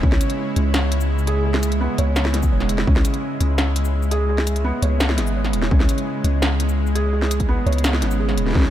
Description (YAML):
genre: half-time drum and bass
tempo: 169 BPM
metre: 4/4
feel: half-time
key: C# minor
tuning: A4 = 440 Hz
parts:
  - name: bowed-like drone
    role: sustained chords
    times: 0.0-8.7 s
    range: C#3 to C#5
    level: -26 LUFS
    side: right 1 dB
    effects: built-in reverb, sidechain pumping
  - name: felt-muted upright piano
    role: arpeggios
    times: 0.0-8.7 s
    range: G#3 to C#5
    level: -26 LUFS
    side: right 2 dB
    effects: digital delay
  - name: long sustained 808-style bass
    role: bass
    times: 0.0-8.7 s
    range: D#1 to C#2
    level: -20 LUFS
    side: equal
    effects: none
  - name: electronic kick drum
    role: drums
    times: 0.0-0.1, 2.4-2.9, 5.7-8.6 s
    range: none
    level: -18 LUFS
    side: equal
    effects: none
  - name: industrial drum kit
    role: drums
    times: 0.1-8.7 s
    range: hi-hat, shaker, snare drum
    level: -24 LUFS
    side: left 1 dB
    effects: none
room: light reverb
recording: none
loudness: -17 LUFS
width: side -12 dB against mid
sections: 0.0-8.7 A section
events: none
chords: 0.0 C#m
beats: | 0.03 0.39 0.74 1.10 | 1.45 1.81 2.16 2.52 | 2.87 3.23 3.58 3.94 | 4.29 4.65 5.00 5.36 | 5.71 6.07 6.42 6.78 | 7.13 7.49 7.84 8.20 | 8.55